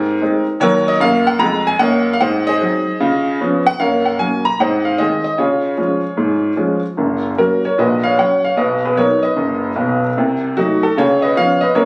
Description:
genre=jazz, stride piano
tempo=151 BPM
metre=4/4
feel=swing 65% on 8ths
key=F# major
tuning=A4 = 444 Hz
part: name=clear upright piano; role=solo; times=0.0-11.9 s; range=F#1 to A#5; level=-16 LUFS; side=equal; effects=none
room=light reverb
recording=recorded on a phone in the room, club reverb, compression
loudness=-16 LUFS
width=mono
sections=0.0-7.0 A section; 7.0-11.9 B section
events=none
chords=0.0 Ab; 0.6 D#m7; 2.2 G#7; 3.0 C#9; 3.8 F#; 4.6 G#; 5.4 C#; 7.0 F#; 7.8 F#/A#; 8.6 B; 10.2 Cdim7; 11.0 C#7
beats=0.21 | 0.61 1.01 1.41 1.80 | 2.20 2.60 3.00 3.40 | 3.79 4.19 4.59 4.99 | 5.38 5.78 6.18 6.58 | 6.98 7.38 7.77 8.17 | 8.57 8.97 9.37 9.77 | 10.17 10.57 10.97 11.37 | 11.77

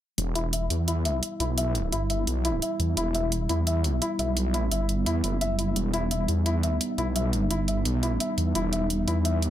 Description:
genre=dark technical drum and bass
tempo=172 BPM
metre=4/4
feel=straight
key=E harmonic minor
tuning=A4 = 439 Hz
part: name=dark analog pad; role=sustained chords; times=0.6-9.5 s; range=G3 to E4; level=-31 LUFS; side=right 1 dB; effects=chorus
part: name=snarling distorted saw bass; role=bass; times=0.2-9.5 s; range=E1 to E2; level=-26 LUFS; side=equal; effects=distortion
part: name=electronic hi-hat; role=drums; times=0.2-9.5 s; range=none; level=-31 LUFS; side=right 1 dB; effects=overdrive
part: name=felt-muted upright piano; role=arpeggios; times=0.4-9.4 s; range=E4 to E5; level=-31 LUFS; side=left 3 dB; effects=low-pass filter, ping-pong delay
room=light reverb, digital ambience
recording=none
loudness=-24 LUFS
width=side -12 dB against mid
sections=0.2-9.5 A section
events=filter sweep on felt piano 0.2-9.5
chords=0.2 Em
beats=| 0.18 0.53 0.88 1.23 | 1.57 1.92 2.27 2.62 | 2.97 3.32 3.67 4.02 | 4.37 4.71 5.06 5.41 | 5.76 6.11 6.46 6.81 | 7.16 7.51 7.86 8.20 | 8.55 8.90 9.25

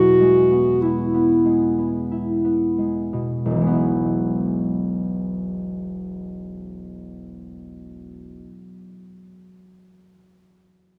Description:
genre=classical, romantic duo for clarinet and harp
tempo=43-49 BPM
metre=3/4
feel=rubato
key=E major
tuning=A4 = 440 Hz
part: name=mellow clarinet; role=melody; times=0.0-2.1 s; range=E4 to F#4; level=-19 LUFS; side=equal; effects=none
part: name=concert harp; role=accompaniment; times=0.0-8.7 s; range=E1 to E4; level=-24 LUFS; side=equal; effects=none
room=wet concert hall reverb, RT60 2.4 s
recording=none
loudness=-21 LUFS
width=mono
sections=0.0-3.5 A section; 3.5-7.4 B section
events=slowing down 0.0-3.5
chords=0.0 E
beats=0.81 2.10 | 3.45 4.78 6.11

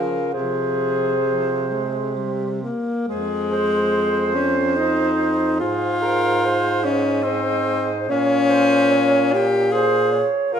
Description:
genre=classical, lyrical piece for single-reed quartet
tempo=64-75 BPM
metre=3/4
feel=rubato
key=F minor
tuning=A4 = 443 Hz
part: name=warm clarinet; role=melody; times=0.0-10.6 s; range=Ab4 to F5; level=-27 LUFS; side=left 8 dB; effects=none
part: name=warm alto saxophone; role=second line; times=0.0-10.6 s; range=F4 to Eb5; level=-24 LUFS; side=right 8 dB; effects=none
part: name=warm tenor saxophone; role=accompaniment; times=0.0-10.6 s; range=F3 to Bb4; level=-20 LUFS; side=left 2 dB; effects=none
part: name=clear baritone saxophone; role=bass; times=0.0-10.6 s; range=F2 to Db3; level=-26 LUFS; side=right 3 dB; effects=none
room=wet recital hall reverb, RT60 1.6 s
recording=minimal, uncompressed stereo recording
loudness=-17 LUFS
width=side -8 dB against mid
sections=0.0-3.1 A section; 3.1-10.6 B section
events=none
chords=0.3 Fm/C; 2.2 C5; 3.1 Fm; 5.6 Fm/Ab; 8.1 Bbm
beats=| 0.35 1.26 2.16 | 3.08 3.96 4.78 | 5.61 6.44 7.26 | 8.09 8.93 9.74 | 10.54

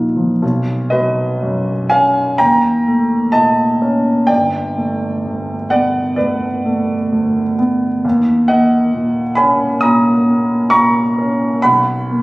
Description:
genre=classical, impressionist solo piano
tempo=53-68 BPM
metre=4/4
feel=rubato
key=unclear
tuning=A4 = 445 Hz
part: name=warm concert grand piano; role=solo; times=0.0-12.2 s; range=G1 to D#6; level=-12 LUFS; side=equal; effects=none
room=moderate scoring stage reverb, RT60 1.8 s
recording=recorded on a phone in the room, club reverb, compression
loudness=-12 LUFS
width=side -21 dB against mid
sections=0.4-12.2 A section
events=none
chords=0.4 Badd9; 2.4 D#7#11; 4.3 Gadd9; 8.0 D#m7; 11.6 Bmaj7(no3)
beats=| 0.42 1.43 2.40 3.34 | 4.29 5.24 6.18 7.11 | 8.04 8.94 9.84 10.73 | 11.64

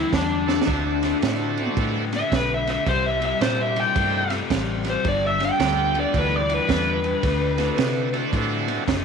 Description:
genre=electric blues shuffle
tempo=110 BPM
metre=4/4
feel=swing 64% on 8ths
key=G major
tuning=A4 = 435 Hz
part: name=dark smooth lead guitar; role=melody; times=0.0-8.1 s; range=D4 to G5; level=-24 LUFS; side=left 1 dB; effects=overdrive
part: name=overdriven semi-hollow guitar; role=riff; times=0.0-9.0 s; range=G2 to B3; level=-27 LUFS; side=left 13 dB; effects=none
part: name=vintage muted fingered electric bass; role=bass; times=0.0-9.0 s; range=F#1 to C3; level=-27 LUFS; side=equal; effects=none
part: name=crunchy breakbeat drum kit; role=drums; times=0.1-9.0 s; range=kick drum, ride cymbal, snare drum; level=-27 LUFS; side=right 6 dB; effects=none
part: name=bright tonewheel organ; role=accompaniment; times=0.5-8.8 s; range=A3 to G4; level=-29 LUFS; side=right 13 dB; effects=overdrive, slow rotary speaker
room=light reverb, small room reverb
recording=1960s-style stereo with parts hard left and right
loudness=-20 LUFS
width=side -6 dB against mid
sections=0.0-9.0 A section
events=lead electric guitar solo 0.0-9.0; drum fill 0.4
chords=0.0 Gsus2; 0.7 D9; 2.9 C9; 5.0 G9; 7.2 D9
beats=0.13 | 0.67 1.22 1.77 2.31 | 2.86 3.41 3.96 4.50 | 5.05 5.60 6.14 6.69 | 7.24 7.78 8.33 8.88

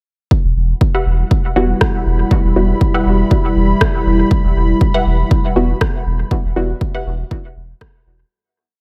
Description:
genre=dub techno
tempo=120 BPM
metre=4/4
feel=swing 53% on 16ths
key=E minor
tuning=A4 = 440 Hz
part: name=dark analog pad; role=sustained chords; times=1.2-8.3 s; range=G3 to B5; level=-21 LUFS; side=equal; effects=chorus, sidechain pumping
part: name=electronic kick drum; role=drums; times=0.3-7.9 s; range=none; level=-18 LUFS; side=equal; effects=overdrive, small room ambience
part: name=warm sub bass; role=bass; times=0.4-8.2 s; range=E1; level=-18 LUFS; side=equal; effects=sidechain pumping
part: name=filtered dub chord stab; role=riff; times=0.9-7.1 s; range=G4 to F#5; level=-26 LUFS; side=equal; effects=phaser, sidechain pumping, dub echo
part: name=filtered dub chord stab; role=stabs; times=1.6-8.3 s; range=G3 to F#4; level=-22 LUFS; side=equal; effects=chorus, phaser, sidechain pumping, dub echo
part: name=electronic rim click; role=drums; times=1.8-7.9 s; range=none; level=-24 LUFS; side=equal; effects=overdrive, small room ambience, dub echo
room=light reverb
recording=none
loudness=-15 LUFS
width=mono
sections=0.3-8.3 groove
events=filter sweep on synth stab 0.3-8.3; fade-out 5.6-8.3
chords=0.3 Emadd9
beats=| 0.31 0.81 1.31 1.81 | 2.31 2.81 3.31 3.81 | 4.31 4.81 5.31 5.81 | 6.31 6.81 7.31 7.81

